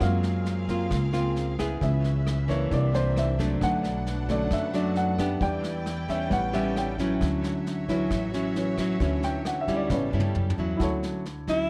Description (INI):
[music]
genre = bossa nova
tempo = 133 BPM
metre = 4/4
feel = straight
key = D major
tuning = A4 = 440 Hz
[part]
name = nylon-string guitar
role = accompaniment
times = 0.0-11.7 s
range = F#2 to G#4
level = -31 LUFS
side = equal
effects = none
[part]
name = warm baby grand piano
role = accompaniment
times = 0.0-11.7 s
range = C#3 to G5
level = -32 LUFS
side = equal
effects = none
[part]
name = dark studio string section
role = sustained chords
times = 0.0-10.8 s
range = B#3 to G5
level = -41 LUFS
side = equal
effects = none
[part]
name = upright bass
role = bass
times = 0.0-11.7 s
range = A1 to G2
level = -32 LUFS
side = equal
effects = none
[part]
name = vintage brush drum kit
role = drums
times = 0.0-11.5 s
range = kick drum, rim click, snare drum, toms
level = -38 LUFS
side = equal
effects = none
[part]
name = breathy alto saxophone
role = melody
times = 11.5-11.7 s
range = E4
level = -26 LUFS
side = equal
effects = none
[sound]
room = light reverb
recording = none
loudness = -27 LUFS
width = mono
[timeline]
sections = 0.0-10.8 A section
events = grand piano solo 0.0-10.8; drum fill 9.9-10.8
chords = 0.0 F#maj9#11; 1.8 C#m7; 2.7 C9; 3.6 Bm7; 5.4 Em7; 6.3 A9; 7.2 Dmaj9; 9.9 A7; 10.8 Dmaj9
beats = | 0.01 0.46 0.91 1.36 | 1.81 2.26 2.71 3.16 | 3.61 4.06 4.51 4.96 | 5.41 5.86 6.31 6.76 | 7.21 7.66 8.11 8.55 | 9.01 9.45 9.90 10.35 | 10.80 11.25